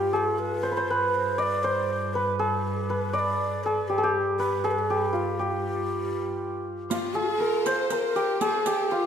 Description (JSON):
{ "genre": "Persian modal ensemble", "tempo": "80 BPM (dotted quarters)", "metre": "6/8", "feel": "straight", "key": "G dastgah homayun", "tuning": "A4 = 441 Hz", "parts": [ { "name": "santur", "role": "melody", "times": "0.0-9.1 s", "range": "F4 to D5", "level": "-25 LUFS", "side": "equal", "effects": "none" }, { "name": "breathy mellow low ney", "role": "second line", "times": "0.0-9.1 s", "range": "F4 to Eb5", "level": "-31 LUFS", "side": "right 1 dB", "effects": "none" }, { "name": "rich double bass", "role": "drone", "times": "0.0-7.0 s", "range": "G2", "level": "-34 LUFS", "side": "equal", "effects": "none" }, { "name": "rich studio violin section", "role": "second line", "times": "6.9-9.1 s", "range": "F4 to C5", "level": "-34 LUFS", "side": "left 1 dB", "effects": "none" }, { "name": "riq", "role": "percussion", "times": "6.9-8.8 s", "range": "none", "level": "-35 LUFS", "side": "right 4 dB", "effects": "none" } ], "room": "wet scoring stage reverb, RT60 2.1 s", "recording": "minimal, uncompressed stereo recording", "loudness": "-24 LUFS", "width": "side -8 dB against mid", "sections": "0.0-6.9 A section; 6.9-9.1 B section", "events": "none", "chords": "none", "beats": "0.13 | 0.89 1.64 | 2.39 3.15 | 3.90 4.65 | 5.40 6.16 | 6.91 7.66 | 8.42" }